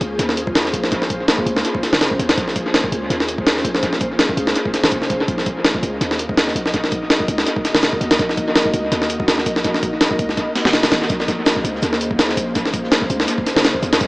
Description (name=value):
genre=drum and bass, jungle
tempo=165 BPM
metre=4/4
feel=swing 54% on 16ths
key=Bb minor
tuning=A4 = 440 Hz
part: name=warm 808-style bass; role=bass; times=0.0-14.1 s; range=F1 to Eb2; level=-27 LUFS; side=equal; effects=none
part: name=jungle sampler-style drum kit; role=drums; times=0.0-14.1 s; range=hi-hat, kick drum, snare drum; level=-17 LUFS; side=equal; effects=dub echo
part: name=crunchy breakbeat drum kit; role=drums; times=11.1-14.1 s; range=hi-hat, shaker, snare drum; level=-32 LUFS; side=equal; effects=none
room=moderate echo chamber reverb, RT60 1.7 s, small room ambience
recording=echo-heavy mix, vinyl crackle, small speaker sound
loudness=-16 LUFS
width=side -23 dB against mid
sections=0.0-14.1 A section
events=none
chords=none